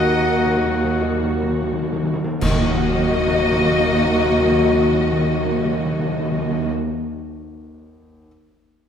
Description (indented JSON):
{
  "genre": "cinematic, emotional film score for orchestra",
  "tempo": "41 BPM (dotted quarters)",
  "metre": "6/8",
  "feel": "rubato",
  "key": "Eb minor",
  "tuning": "A4 = 440 Hz",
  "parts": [
    { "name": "clear symphonic violin section", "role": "melody", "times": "0.0-6.7 s", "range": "Eb5", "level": "-26 LUFS", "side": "left 4 dB", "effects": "none" },
    { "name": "clear clarinet", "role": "second line", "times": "0.0-1.7 s", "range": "Gb5", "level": "-25 LUFS", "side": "left 3 dB", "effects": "none" },
    { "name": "mellow flute section", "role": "second line", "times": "0.0-6.7 s", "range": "Bb4 to Eb5", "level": "-27 LUFS", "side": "left 2 dB", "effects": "none" },
    { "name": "warm symphonic violin section", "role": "second line", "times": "0.0-6.7 s", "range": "Gb4 to Eb5", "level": "-31 LUFS", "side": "left 3 dB", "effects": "none" },
    { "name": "rich symphonic viola section", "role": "accompaniment", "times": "0.0-6.7 s", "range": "Bb3 to Gb4", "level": "-25 LUFS", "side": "right 1 dB", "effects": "none" },
    { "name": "warm concert grand piano", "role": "accompaniment", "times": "0.0-8.3 s", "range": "Eb2 to Gb5", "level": "-30 LUFS", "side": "equal", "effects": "none" },
    { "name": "mellow French horn section", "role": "sustained chords", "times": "0.0-6.7 s", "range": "Bb3 to Gb4", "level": "-23 LUFS", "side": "left 3 dB", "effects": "none" },
    { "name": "dark symphonic cello section", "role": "bass", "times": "0.0-6.7 s", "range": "Eb2", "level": "-30 LUFS", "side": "right 3 dB", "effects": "none" },
    { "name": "rich symphonic double bass section", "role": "bass", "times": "0.0-6.7 s", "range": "Eb2", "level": "-27 LUFS", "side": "right 4 dB", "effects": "none" },
    { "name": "timpani", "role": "percussion", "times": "0.0-6.7 s", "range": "Eb3", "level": "-23 LUFS", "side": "left 1 dB", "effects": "none" },
    { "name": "clash cymbals and concert bass drum", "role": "percussion", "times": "2.4-4.3 s", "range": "none", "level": "-25 LUFS", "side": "equal", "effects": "none" }
  ],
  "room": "wet scoring stage reverb, RT60 1.5 s",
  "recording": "none",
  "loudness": "-16 LUFS",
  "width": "side -8 dB against mid",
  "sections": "0.0-2.4 A section; 2.4-8.3 B section",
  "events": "timpani fill 0.0-2.4; slowing down 0.0-2.4; band accent 2.4-3.4",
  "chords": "0.0 Ebm"
}